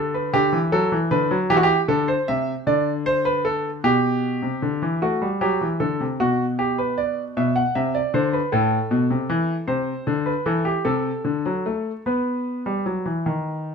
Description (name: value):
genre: classical, baroque-style two-part invention for grand piano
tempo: 51 BPM (dotted quarters)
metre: 6/8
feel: straight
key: G major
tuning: A4 = 442 Hz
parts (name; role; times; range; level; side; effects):
- clear grand piano; solo; 0.0-13.7 s; A2 to F#5; -20 LUFS; equal; none
room: moderate stone room reverb, RT60 0.9 s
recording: none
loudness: -20 LUFS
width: side -6 dB against mid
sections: 0.0-5.0 A section; 5.0-13.7 B section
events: none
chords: 0.3 G/D; 1.5 Am7; 2.7 D5; 3.8 G/B; 5.0 D7; 6.2 G/B; 7.4 E5/B; 8.5 Am; 9.7 Am/C; 10.8 F#dim/C; 12.1 B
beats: | 0.34 1.50 | 2.67 3.84 | 5.02 6.20 | 7.36 8.52 | 9.68 10.85 | 12.05 13.25